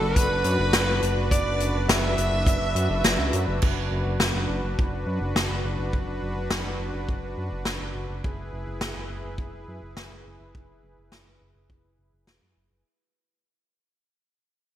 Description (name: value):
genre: synthwave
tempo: 104 BPM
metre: 4/4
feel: straight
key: unclear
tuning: A4 = 440 Hz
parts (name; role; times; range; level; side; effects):
- breathy alto saxophone; melody; 0.0-3.5 s; A4 to E5; -28 LUFS; right 1 dB; digital delay
- string machine, violins; second line; 0.0-3.5 s; A4 to E5; -34 LUFS; equal; ensemble chorus, digital delay
- soft supersaw; sustained chords; 0.0-12.8 s; D4 to B4; -32 LUFS; equal; sidechain pumping
- fat analog bass; bass; 0.0-12.8 s; E1 to F#2; -28 LUFS; equal; tube saturation, sidechain pumping
- kick drum; drums; 0.2-11.8 s; none; -24 LUFS; equal; none
- natural country drum kit; drums; 0.2-12.4 s; crash cymbal, hi-hat, snare drum; -27 LUFS; left 1 dB; gated reverb
room: moderate lush hall reverb, RT60 2.5 s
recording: bright 1980s-style digital production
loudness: -23 LUFS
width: side -11 dB against mid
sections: 0.0-3.6 A section; 3.6-12.9 B section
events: fade-out 3.6-12.9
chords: 0.0 D6/F#; 3.6 Bm/F#; 8.2 E/F#